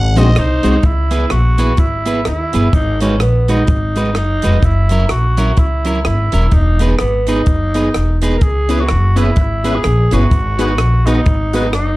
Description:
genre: ska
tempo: 127 BPM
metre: 4/4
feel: swing 58% on 8ths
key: C# dorian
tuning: A4 = 440 Hz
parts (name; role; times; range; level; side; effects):
- growling trumpet; melody; 0.0-0.9 s; B#4 to F#5; -21 LUFS; left 1 dB; slapback echo
- upright bass; bass; 0.0-12.0 s; D#1 to D#2; -14 LUFS; equal; none
- electric guitar at the edge of break-up; accompaniment; 0.2-11.7 s; F#3 to B#4; -19 LUFS; right 2 dB; slapback echo
- tonewheel organ; stabs; 0.2-0.8, 8.7-11.7 s; B#3 to B4; -22 LUFS; left 4 dB; overdrive, chorus vibrato, slow rotary speaker
- compact cocktail drum kit; drums; 0.2-11.9 s; hi-hat, kick drum, rim click; -16 LUFS; equal; none
- cabasa; percussion; 0.2-11.9 s; none; -42 LUFS; left 14 dB; none
- raspy tenor saxophone; melody; 0.4-12.0 s; B3 to A#4; -20 LUFS; equal; slapback echo
room: light reverb, studio ambience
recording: dark, warm production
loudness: -12 LUFS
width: side -19 dB against mid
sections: 0.8-12.0 A section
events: none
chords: 0.0 G#7; 0.8 C#m7; 2.7 G#m7; 4.6 F#7; 6.5 Emaj7; 8.4 C#m7; 10.3 G#m7

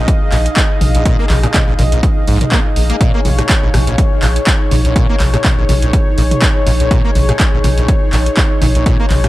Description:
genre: acid house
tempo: 123 BPM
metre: 4/4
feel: swing 55% on 16ths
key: Bb minor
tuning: A4 = 440 Hz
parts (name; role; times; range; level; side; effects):
- warm analog pad; sustained chords; 0.0-9.3 s; Db5 to Eb5; -22 LUFS; left 2 dB; chorus, sidechain pumping
- acid bass, saw; riff; 0.0-9.3 s; Bb1 to Bb3; -19 LUFS; equal; tube saturation, ensemble chorus, analog delay
- granular cloud pad; texture; 0.0-9.3 s; Eb4 to C6; -23 LUFS; right 1 dB; built-in reverb, sidechain pumping
- electronic kick drum; drums; 0.1-9.0 s; none; -14 LUFS; equal; overdrive
- punchy analog drum machine; drums; 0.1-9.3 s; handclaps, hi-hat, rim click, toms; -18 LUFS; equal; overdrive
- round analog bass; bass; 0.3-9.3 s; Bb1; -14 LUFS; equal; sidechain pumping
room: little or no reverb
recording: none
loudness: -10 LUFS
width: side -16 dB against mid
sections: 0.0-9.3 A section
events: none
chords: 0.0 Bbm

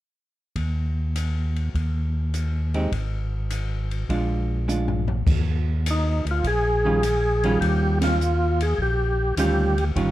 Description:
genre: soul jazz organ trio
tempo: 102 BPM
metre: 4/4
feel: swing 69% on 8ths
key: Eb major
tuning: A4 = 440 Hz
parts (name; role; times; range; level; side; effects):
- tonewheel organ; bass; 0.6-10.1 s; G1 to Eb2; -24 LUFS; equal; overdrive, chorus vibrato, slow rotary speaker
- open jazz drum kit; drums; 0.6-10.1 s; crash cymbal, hi-hat, kick drum, ride cymbal, snare drum, toms; -29 LUFS; left 1 dB; none
- archtop guitar, miked and amplified; accompaniment; 2.7-10.1 s; Eb3 to G4; -25 LUFS; right 2 dB; none
- percussive tonewheel organ; melody; 5.9-9.8 s; Eb4 to Ab4; -23 LUFS; equal; overdrive, chorus vibrato, slow rotary speaker
room: light reverb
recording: dark, warm production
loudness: -21 LUFS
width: side -15 dB against mid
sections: 0.6-5.3 A section; 5.3-10.1 B section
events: drum fill 4.7-5.3; band accent 7.9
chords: 0.6 N.C.; 1.7 Eb; 2.9 N.C.; 4.1 Bb7; 5.3 Eb9

